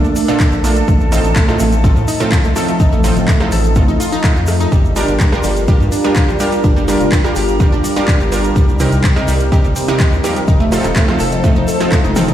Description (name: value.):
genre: progressive house.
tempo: 125 BPM.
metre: 4/4.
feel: straight.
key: unclear.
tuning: A4 = 445 Hz.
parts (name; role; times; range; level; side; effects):
evolving wavetable pad; sustained chords; 0.0-12.3 s; C3 to Bb4; -20 LUFS; left 1 dB; phaser, built-in reverb, sidechain pumping.
glassy wavetable pluck; arpeggios; 0.0-12.3 s; G3 to A5; -20 LUFS; right 1 dB; chorus, sidechain pumping, digital delay.
round analog bass; bass; 0.0-12.3 s; Eb1 to A2; -17 LUFS; equal; sidechain pumping.
egg shaker; percussion; 0.0-12.3 s; none; -32 LUFS; left 2 dB; none.
deep house drum kit; drums; 0.2-12.3 s; handclaps, hi-hat, rim click, toms; -22 LUFS; left 1 dB; overdrive.
wide unison pluck; stabs; 0.3-12.3 s; A2 to Bb4; -19 LUFS; right 2 dB; sidechain pumping, digital delay.
electronic kick drum; drums; 0.4-12.0 s; none; -13 LUFS; equal; none.
room: light reverb, digital ambience.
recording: played on a big sound system in a bare room, stone room reverb.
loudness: -11 LUFS.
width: side -11 dB against mid.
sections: 0.0-12.3 A section.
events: drum fill 11.9-12.3.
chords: 0.0 Bbmaj7; 0.9 F7/A; 4.7 Gm7; 8.6 Cm7; 10.5 F7.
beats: 0.40 | 0.88 1.36 1.84 2.32 | 2.80 3.28 3.76 4.24 | 4.72 5.20 5.68 6.16 | 6.64 7.12 7.60 8.08 | 8.56 9.04 9.52 10.00 | 10.48 10.96 11.44 11.92.